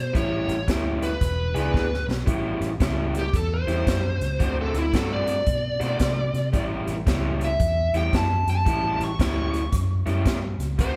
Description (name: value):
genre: electric blues shuffle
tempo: 113 BPM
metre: 4/4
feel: swing 64% on 8ths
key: A mixolydian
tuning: A4 = 440 Hz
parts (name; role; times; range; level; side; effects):
- smooth overdriven lead guitar; melody; 0.0-11.0 s; E4 to C#6; -30 LUFS; equal; none
- vintage muted fingered electric bass; bass; 0.0-11.0 s; E1 to C3; -29 LUFS; equal; none
- raw garage guitar; riff; 0.1-11.0 s; A2 to G#4; -31 LUFS; equal; overdrive
- swinging big-band drum kit; drums; 0.1-10.9 s; hi-hat, kick drum, snare drum; -29 LUFS; equal; none
room: moderate large studio reverb, RT60 1.4 s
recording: band playing live in one room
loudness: -24 LUFS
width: mono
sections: 0.0-2.3 A section; 2.3-11.0 B section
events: drum fill 1.7-2.3; lead electric guitar solo 2.3-11.0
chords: 0.1 A7; 1.2 E7; 2.3 A7; 4.4 D7; 6.5 A7